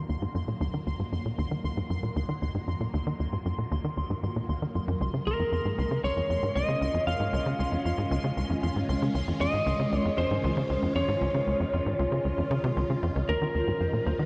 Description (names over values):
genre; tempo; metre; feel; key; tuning
ambient, sequencer-driven space music; 116 BPM; 4/4; straight; unclear; A4 = 440 Hz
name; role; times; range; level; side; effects
phased string machine; sustained chords; 0.0-14.3 s; Eb3 to F4; -36 LUFS; equal; ensemble chorus, phaser
tight sequencer bass; riff; 0.0-14.3 s; Db2 to Eb3; -31 LUFS; equal; tape echo
pulsing gated texture; texture; 0.0-14.3 s; C5 to C6; -44 LUFS; equal; chorus, built-in reverb
lightly driven lead guitar; melody; 5.3-14.3 s; Bb4 to F5; -33 LUFS; equal; tape echo
room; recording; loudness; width
wet cathedral reverb, RT60 6.0 s; in a vast, echoing space, cassette tape; -29 LUFS; mono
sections
0.0-13.3 A section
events
fade-in on string machine 0.0-13.3; filter sweep on analog synth bass 0.0-13.3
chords
0.0 Ebmadd9; 5.0 Dbadd9; 13.3 Ebmadd9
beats
0.35 | 0.87 1.39 1.91 2.42 | 2.94 3.46 3.98 4.49 | 5.01 5.53 6.04 6.56 | 7.08 7.59 8.11 8.63 | 9.15 9.66 10.18 10.70 | 11.22 11.73 12.25 12.77 | 13.29 13.80